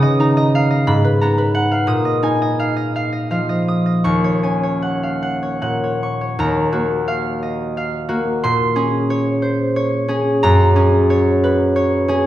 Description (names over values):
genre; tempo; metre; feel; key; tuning
classical, solo harp piece; 50-62 BPM (dotted quarters); 6/8; rubato; Eb minor; A4 = 438 Hz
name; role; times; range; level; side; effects
concert harp; solo; 0.0-12.3 s; Eb2 to Eb6; -15 LUFS; equal; none
room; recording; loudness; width
wet recital hall reverb, RT60 1.3 s; recorded in a church or concert hall; -15 LUFS; side -13 dB against mid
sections
0.0-6.4 A section; 6.4-12.3 B section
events
none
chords
0.0 Db69; 0.9 Abm9; 1.9 Bb7sus4; 4.1 Ebm11; 6.4 Ebmadd9; 8.4 Bbm9; 10.4 Gbadd9